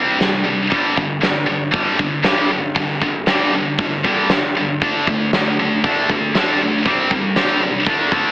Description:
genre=quiet-loud alternative rock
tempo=117 BPM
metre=4/4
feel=straight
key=unclear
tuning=A4 = 436 Hz
part: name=heavy high-gain guitar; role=riff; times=0.0-8.3 s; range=G2 to D4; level=-16 LUFS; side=equal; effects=distortion
part: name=huge arena drum kit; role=drums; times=0.2-8.2 s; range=hi-hat, kick drum, snare drum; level=-19 LUFS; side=equal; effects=none
room=light reverb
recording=heavily compressed radio sound, AM radio sound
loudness=-15 LUFS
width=side -19 dB against mid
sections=0.0-8.3 A section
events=none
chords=0.0 C5; 0.7 G5; 4.8 D5; 6.9 C5

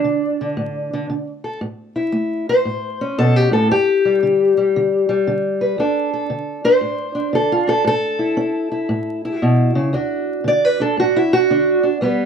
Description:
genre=acoustic country blues, solo or duo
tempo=115 BPM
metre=4/4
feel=swing 65% on 8ths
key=D major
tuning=A4 = 438 Hz
part: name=fingerpicked steel-string acoustic guitar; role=solo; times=0.0-12.3 s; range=D2 to D5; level=-16 LUFS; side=equal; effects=none
room=studio ambience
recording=dry, close 1970s-style studio recording, vinyl crackle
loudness=-16 LUFS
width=side -7 dB against mid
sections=0.0-9.9 A section; 9.9-12.3 A section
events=steel-string acoustic guitar solo 0.0-12.3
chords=0.0 D5; 1.6 A; 3.7 G5; 5.8 D5; 7.9 A; 9.9 D

